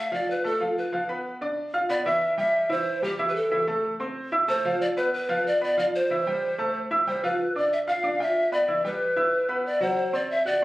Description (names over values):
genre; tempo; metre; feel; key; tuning
latin; 186 BPM; 4/4; straight; unclear; A4 = 443 Hz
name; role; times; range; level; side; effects
reedy pan flute; melody; 0.0-10.6 s; G4 to F5; -24 LUFS; equal; plate reverb
clear grand piano; accompaniment; 0.0-10.6 s; E3 to F#6; -27 LUFS; right 1 dB; none
room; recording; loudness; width
wet large studio reverb, RT60 0.9 s; recorded on a phone in the room, club reverb, compression; -23 LUFS; side -17 dB against mid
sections
0.0-7.4 A section; 7.4-10.6 B section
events
none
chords
0.0 F(#11); 0.9 Dm69; 2.2 Em; 3.5 Fmaj7; 4.8 Bdim/F; 6.1 Am7; 7.4 G7; 8.7 Em9; 10.0 D7